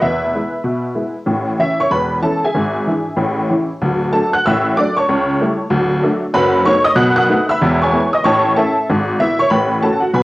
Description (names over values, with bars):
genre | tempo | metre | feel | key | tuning
jazz, stride piano | 190 BPM | 4/4 | swing 64% on 8ths | A major, E major from 6.3 s | A4 = 440 Hz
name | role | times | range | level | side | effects
honky-tonk upright piano | solo | 0.0-10.2 s | D1 to F#6 | -13 LUFS | equal | none
room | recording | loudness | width
moderate studio reverb, RT60 0.5 s | home recording on cassette | -13 LUFS | side -19 dB against mid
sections
0.0-1.3 A section; 1.3-10.2 B section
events
none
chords
0.0 E; 1.3 A; 2.5 E7/G#; 3.2 A; 3.8 D; 5.1 A7/C#; 5.7 D; 6.3 B7/F#; 7.0 B7; 7.6 E; 8.2 A; 8.9 E/G#; 9.5 F#m/A